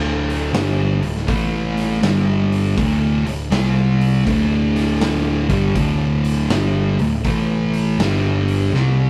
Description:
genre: blues rock power trio and southern rock.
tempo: 80 BPM.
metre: 4/4.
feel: swing 65% on 8ths.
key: unclear.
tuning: A4 = 440 Hz.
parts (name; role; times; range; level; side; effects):
fuzz guitar; riff; 0.0-9.1 s; D2 to C4; -20 LUFS; equal; distortion.
overdriven picked electric bass; bass; 0.0-9.1 s; D1 to C2; -26 LUFS; equal; none.
raw garage drum kit; drums; 0.3-9.0 s; hi-hat, kick drum, snare drum; -26 LUFS; equal; none.
room: moderate stone room reverb, RT60 1.1 s.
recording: rough rehearsal-room recording.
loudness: -18 LUFS.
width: mono.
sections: 0.0-9.1 A section.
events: drum fill 8.7-9.1.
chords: 0.0 D5; 1.3 A5; 2.0 G5; 2.8 D5; 3.5 C5; 4.3 D5; 7.3 A5; 8.0 G5.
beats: 0.54 1.29 2.03 | 2.78 3.52 4.27 5.02 | 5.76 6.51 7.25 8.00 | 8.74.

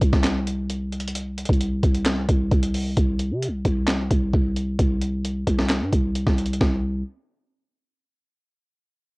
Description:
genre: hip hop, trap.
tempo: 132 BPM.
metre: 4/4.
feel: half-time.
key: unclear.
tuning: A4 = 440 Hz.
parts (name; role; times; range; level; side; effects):
growling 808-style bass; bass; 0.0-7.0 s; C2 to C3; -23 LUFS; equal; none.
breakbeat sampler-style drum kit; drums; 0.0-6.7 s; handclaps, hi-hat, kick drum, snare drum; -22 LUFS; equal; cassette tape.
room: little or no reverb.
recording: home recording on cassette.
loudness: -20 LUFS.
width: side -28 dB against mid.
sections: 0.0-3.0 A section; 3.0-6.6 B section; 6.6-8.4 C section.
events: none.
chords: none.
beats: 0.24 0.70 | 1.15 1.61 2.06 2.52 | 2.97 3.42 3.88 4.33 | 4.79 5.24 5.70 6.15 | 6.61.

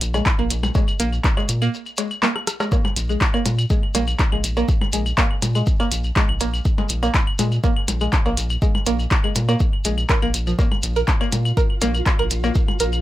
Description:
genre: minimal techno.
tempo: 122 BPM.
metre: 4/4.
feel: straight.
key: unclear.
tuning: A4 = 443 Hz.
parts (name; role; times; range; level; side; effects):
rubbery square bass; bass; 0.0-13.0 s; Bb1 to Bb2; -22 LUFS; equal; sidechain pumping.
minimal click drum kit; drums; 0.0-12.9 s; handclaps, hi-hat, rim click; -22 LUFS; equal; none.
shekere; percussion; 0.0-13.0 s; none; -32 LUFS; left 2 dB; none.
string-like resonator pluck; riff; 0.1-12.8 s; F3 to Bb4; -25 LUFS; right 1 dB; chorus, sidechain pumping, dub echo.
cowbell, percussion blips and claves; percussion; 0.1-13.0 s; none; -28 LUFS; left 2 dB; dub echo.
electronic kick drum; drums; 0.3-12.7 s; none; -20 LUFS; equal; none.
flickering grainy texture; texture; 11.0-13.0 s; F4; -33 LUFS; right 3 dB; built-in reverb, sidechain pumping.
room: little or no reverb.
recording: faint mains hum.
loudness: -18 LUFS.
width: side -15 dB against mid.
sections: 0.0-2.7 A section; 2.7-13.0 A section.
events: drop 0.0-2.7, 2.7-13.0; break 1.7-2.7; drum fill 2.4-2.7.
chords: 0.0 Bb5.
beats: 0.26 | 0.75 1.24 1.74 2.23 | 2.72 3.21 3.70 4.19 | 4.69 5.18 5.67 6.16 | 6.65 7.14 7.64 8.13 | 8.62 9.11 9.60 10.10 | 10.59 11.08 11.57 12.06 | 12.55.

